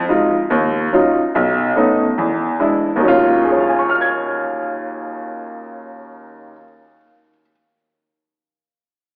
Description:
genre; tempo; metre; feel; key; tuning
jazz; 143 BPM; 4/4; swing 66% on 8ths; Eb minor; A4 = 440 Hz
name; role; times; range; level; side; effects
warm upright piano; accompaniment; 0.0-7.5 s; B1 to Ab6; -18 LUFS; equal; none
room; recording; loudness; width
wet concert hall reverb, RT60 2.1 s; worn, warbling old tape, cassette tape, warbly pitch drift, AM radio sound; -17 LUFS; mono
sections
0.0-3.0 A section; 3.0-6.4 B section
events
none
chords
0.5 Ebm9; 1.3 B9; 2.2 E7; 3.0 Ebm9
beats
0.08 0.49 0.91 | 1.33 1.75 2.17 2.59 | 3.01 3.43 3.85 4.26 | 4.68 5.10 5.52 5.94

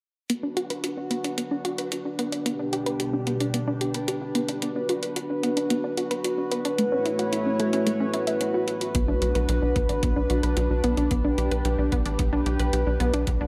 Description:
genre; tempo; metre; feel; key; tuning
synthwave; 111 BPM; 4/4; straight; B minor; A4 = 438 Hz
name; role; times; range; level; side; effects
chorused pulse-width pad; sustained chords; 0.3-13.5 s; B2 to C#5; -30 LUFS; equal; sidechain pumping
unison pluck; arpeggios; 0.3-13.5 s; A3 to E5; -31 LUFS; equal; tape echo
electronic hi-hat; drums; 0.3-13.4 s; none; -35 LUFS; equal; overdrive
tight sequencer bass; bass; 8.9-13.5 s; A1 to B1; -28 LUFS; equal; none
electronic kick drum; drums; 8.9-13.4 s; none; -31 LUFS; equal; none
room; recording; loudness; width
moderate plate reverb, RT60 1.9 s; dreamy mix soaked in reverb; -26 LUFS; mono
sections
0.3-13.5 A section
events
filter sweep on synth arpeggio sound 0.3-13.5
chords
0.3 Bm; 2.5 G/B; 4.6 Bm; 6.8 A6; 8.9 Bm; 11.1 G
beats
| 0.30 0.84 1.38 1.92 | 2.46 3.00 3.54 4.08 | 4.62 5.16 5.70 6.24 | 6.79 7.33 7.87 8.41 | 8.95 9.49 10.03 10.57 | 11.11 11.65 12.19 12.73 | 13.27

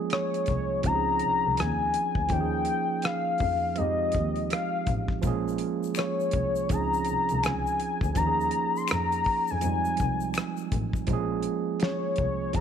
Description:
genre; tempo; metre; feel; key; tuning
R&B, neo-soul; 82 BPM; 4/4; swing 64% on 16ths; Bb dorian; A4 = 439 Hz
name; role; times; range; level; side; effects
overdriven tine electric piano; accompaniment; 0.0-12.6 s; F3 to Eb5; -30 LUFS; right 8 dB; none
warm velvety synth lead; melody; 0.1-12.6 s; Db5 to C6; -27 LUFS; left 4 dB; chorus
damped 70s drum kit; drums; 0.1-12.6 s; hi-hat, kick drum, rim click, snare drum; -30 LUFS; left 1 dB; none
muted double bass; bass; 0.5-12.6 s; A1 to F2; -32 LUFS; left 2 dB; none
egg shaker and finger snaps; percussion; 5.2-11.1 s; none; -40 LUFS; left 17 dB; none
room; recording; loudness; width
light reverb, small room ambience; 1960s-style stereo with parts hard left and right; -24 LUFS; side -8 dB against mid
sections
0.0-11.1 A section; 11.1-12.6 A section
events
none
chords
0.0 Bbm9; 0.8 Dbmaj9; 2.3 Eb9sus4; 3.8 Fm7; 5.2 Bbm9; 6.7 Dbmaj9; 8.2 Eb9sus4; 9.6 Fm7; 11.1 Bbm9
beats
0.11 0.84 1.57 | 2.30 3.04 3.77 4.50 | 5.23 5.96 6.69 7.42 | 8.16 8.89 9.62 10.35 | 11.08 11.81 12.55

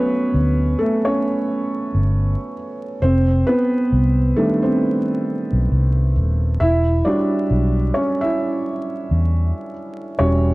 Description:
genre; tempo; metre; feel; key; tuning
lo-fi hip hop; 67 BPM; 4/4; swing 59% on 16ths; unclear; A4 = 441 Hz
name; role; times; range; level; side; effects
felt-muted upright piano; accompaniment; 0.0-10.5 s; Eb3 to E5; -19 LUFS; right 1 dB; low-pass filter
vintage muted fingered electric bass; bass; 0.3-10.5 s; Eb1 to E2; -17 LUFS; equal; none
room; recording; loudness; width
light reverb, small room ambience; dark, warm production, vinyl crackle; -16 LUFS; side -21 dB against mid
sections
0.0-10.5 A section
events
felt piano solo 0.0-10.5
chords
0.0 Gmaj7; 3.0 F13 (rootless); 6.6 Em69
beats
0.34 1.23 2.13 | 3.02 3.92 4.81 5.71 | 6.60 7.50 8.39 9.29 | 10.19

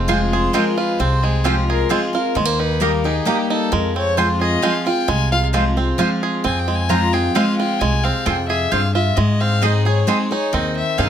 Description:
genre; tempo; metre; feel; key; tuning
bluegrass; 132 BPM; 3/4; straight; F minor; A4 = 440 Hz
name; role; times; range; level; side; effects
bluegrass banjo; melody; 0.0-11.1 s; Ab3 to Ab4; -22 LUFS; right 5 dB; tape echo
warm fiddle; second line; 0.0-11.1 s; G4 to Bb5; -23 LUFS; left 5 dB; none
picked steel-string acoustic guitar; accompaniment; 0.0-11.1 s; F2 to Ab4; -21 LUFS; left 2 dB; none
upright bass; bass; 0.0-11.1 s; F1 to Ab2; -20 LUFS; equal; none
mandolin; stabs; 0.1-11.1 s; Bb3 to Bb5; -22 LUFS; right 5 dB; none
room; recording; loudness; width
light reverb; none; -16 LUFS; side -9 dB against mid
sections
0.0-11.1 A section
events
fiddle solo 0.0-11.1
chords
0.0 Fm; 2.4 Eb; 3.7 Fm; 9.2 Ab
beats
0.09 0.54 | 1.00 1.45 1.91 | 2.36 2.82 3.27 | 3.72 4.18 4.63 | 5.09 5.54 5.99 | 6.45 6.90 7.36 | 7.81 8.26 8.72 | 9.17 9.63 10.08 | 10.54 10.99

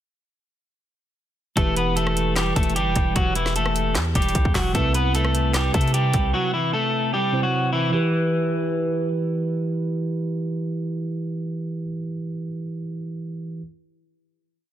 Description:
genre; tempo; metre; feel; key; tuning
hip hop, trap; 151 BPM; 4/4; half-time; E minor; A4 = 440 Hz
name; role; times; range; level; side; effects
electric guitar at the edge of break-up; melody; 1.6-9.1 s; E3 to B4; -23 LUFS; left 2 dB; vibrato effect
mellow tine electric piano; accompaniment; 1.6-13.6 s; C3 to C5; -25 LUFS; right 2 dB; none
hard-hitting 808-style bass; bass; 1.6-6.3 s; E1 to C3; -24 LUFS; equal; none
trap drum kit; drums; 1.6-6.2 s; handclaps, hi-hat, kick drum, rim click, snare drum; -24 LUFS; equal; none
room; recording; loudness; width
little or no reverb; dense, heavily limited modern master; -20 LUFS; side -11 dB against mid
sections
1.6-7.9 hook; 7.9-11.1 final chord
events
none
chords
1.6 Em; 4.7 Cmaj7; 7.9 Em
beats
| 1.57 1.97 2.36 2.76 | 3.16 3.56 3.95 4.35 | 4.75 5.15 5.54 5.94 | 6.34 6.74 7.13 7.53 | 7.93 8.32 8.72 9.12 | 9.52 9.91 10.31 10.71

